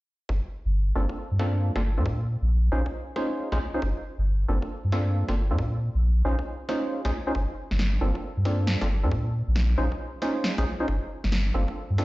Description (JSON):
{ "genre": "UK garage, two-step garage", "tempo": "136 BPM", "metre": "4/4", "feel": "swing 64% on 16ths", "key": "unclear", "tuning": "A4 = 437 Hz", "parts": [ { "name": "soft dub sub bass", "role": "bass", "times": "0.3-12.0 s", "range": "G1 to Bb2", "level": "-23 LUFS", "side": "equal", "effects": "tube saturation" }, { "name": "electronic kick drum", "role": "drums", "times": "0.3-12.0 s", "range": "none", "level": "-37 LUFS", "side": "equal", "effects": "high-pass filter on kick" }, { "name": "percussive organ stab", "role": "stabs", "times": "1.0-12.0 s", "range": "Bb3 to C5", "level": "-30 LUFS", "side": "equal", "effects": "analog chorus, vintage 12-bit sampler grit, dub echo" }, { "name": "electronic snare drum", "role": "drums", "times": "1.4-12.0 s", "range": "none", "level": "-33 LUFS", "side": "equal", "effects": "low-pass filter on snare, low-pass filter on room" } ], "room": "light reverb", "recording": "played on a big sound system in a bare room, stone room reverb, nothing above 7.7 kHz", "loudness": "-24 LUFS", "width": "side -19 dB against mid", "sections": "0.3-12.0 A section", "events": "none", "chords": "0.3 Gm11; 2.1 Bbm11; 3.8 Gm11; 5.6 Bbm11; 7.4 Gm11; 9.1 Bbm11; 10.9 Gm11" }